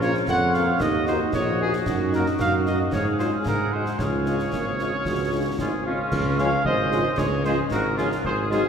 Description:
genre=military-style march for wind band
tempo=113 BPM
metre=2/4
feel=straight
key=Db major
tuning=A4 = 440 Hz
part: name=warm cornet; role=melody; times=0.0-8.7 s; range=F4 to Gb5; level=-26 LUFS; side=right 1 dB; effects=none
part: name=dark euphonium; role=second line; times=0.0-6.0 s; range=Bb3 to Gb4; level=-31 LUFS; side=right 3 dB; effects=none
part: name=warm woodwind section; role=second line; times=0.0-8.6 s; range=Db4 to Gb5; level=-30 LUFS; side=equal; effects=none
part: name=warm French horn section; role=accompaniment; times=0.0-8.6 s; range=Ab3 to Gb4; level=-31 LUFS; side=left 4 dB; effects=none
part: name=mellow tuba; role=bass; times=0.0-8.7 s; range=Ab1 to Ab2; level=-25 LUFS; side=right 1 dB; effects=none
part: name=concert snare drum, concert bass drum and clash cymbals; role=drums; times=0.0-8.6 s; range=none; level=-31 LUFS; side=left 1 dB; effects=none
part: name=clear trombone section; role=sustained chords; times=6.4-8.6 s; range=F3 to Ab3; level=-30 LUFS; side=right 2 dB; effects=none
room=wet church reverb, RT60 3.3 s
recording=recorded in a church or concert hall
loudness=-21 LUFS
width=side -7 dB against mid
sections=0.0-6.1 A section; 6.1-8.7 B section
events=none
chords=0.0 Bbm; 0.8 Ebm; 1.9 Ebm/Gb; 2.9 Db/Ab; 3.5 Ab7; 4.0 Db

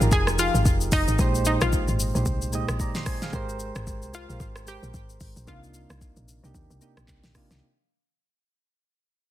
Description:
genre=amapiano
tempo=112 BPM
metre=4/4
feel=swing 58% on 16ths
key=unclear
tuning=A4 = 440 Hz
part: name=analog pluck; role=melody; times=0.0-7.0 s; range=Eb4 to Ab4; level=-27 LUFS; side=left 1 dB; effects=chorus, digital delay
part: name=soft electric-piano-like synth keys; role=accompaniment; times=0.0-7.6 s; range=Bb2 to C6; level=-30 LUFS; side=right 3 dB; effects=chorus
part: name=woody log drum bass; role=bass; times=0.0-7.6 s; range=F1 to Eb2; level=-26 LUFS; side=equal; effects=none
part: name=smooth R&B drum kit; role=drums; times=0.0-7.6 s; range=handclaps, hi-hat, kick drum, rim click, shaker, snare drum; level=-27 LUFS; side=equal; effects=none
room=digital ambience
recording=dense, heavily limited modern master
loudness=-22 LUFS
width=side -13 dB against mid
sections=0.0-7.6 A section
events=fade-out 0.0-7.6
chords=0.0 Fm9; 1.2 Bb13sus4; 3.3 Abmaj9; 5.5 Cm11

